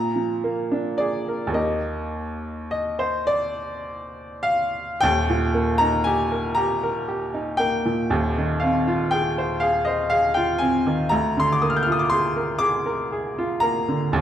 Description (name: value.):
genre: classical, romantic nocturne for solo piano.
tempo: 34-41 BPM (dotted quarters).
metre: 6/8.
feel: rubato.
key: Eb major.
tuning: A4 = 437 Hz.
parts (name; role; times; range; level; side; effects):
bright upright piano; solo; 0.0-14.2 s; Eb1 to G6; -20 LUFS; equal; none.
room: moderate recital hall reverb, RT60 1.7 s.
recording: dark, warm production.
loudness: -20 LUFS.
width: side -10 dB against mid.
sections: 0.0-5.0 A section; 5.0-14.2 B section.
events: none.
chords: 0.0 Bb7; 1.6 Eb; 8.1 Fm7/Eb; 11.1 Bb7/D.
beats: | 1.56 3.30 | 5.02 6.57 | 8.11 9.62 | 11.12 12.61 | 14.12.